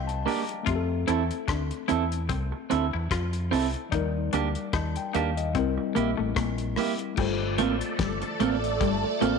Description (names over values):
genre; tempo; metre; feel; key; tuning
lovers rock reggae; 74 BPM; 4/4; swing 56% on 16ths; F major; A4 = 440 Hz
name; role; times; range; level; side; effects
tine electric piano; accompaniment; 0.0-9.4 s; F3 to Bb5; -32 LUFS; left 10 dB; medium stereo tremolo
twangy electric guitar; riff; 0.0-9.3 s; G3 to F4; -34 LUFS; left 10 dB; lush chorus
deep dub fingered electric bass; bass; 0.0-9.4 s; G1 to F2; -30 LUFS; equal; none
cloth-damped thuddy drum kit; drums; 0.1-9.4 s; crash cymbal, hi-hat, kick drum, rim click, snare drum; -33 LUFS; left 3 dB; none
clean electric guitar; stabs; 0.3-9.4 s; Bb3 to A4; -29 LUFS; right 10 dB; none
phased string machine; second line; 7.2-9.4 s; A3 to D5; -29 LUFS; right 2 dB; ensemble chorus, phaser
room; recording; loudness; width
moderate echo chamber reverb, RT60 2.0 s; 1960s-style stereo with parts hard left and right; -25 LUFS; side -5 dB against mid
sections
0.0-7.2 A section; 7.2-9.4 B section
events
tine electric piano fill 0.0-0.7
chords
0.0 Ebmaj7; 0.7 Fmaj7; 3.9 Ebmaj7; 5.6 C7; 7.2 Gm11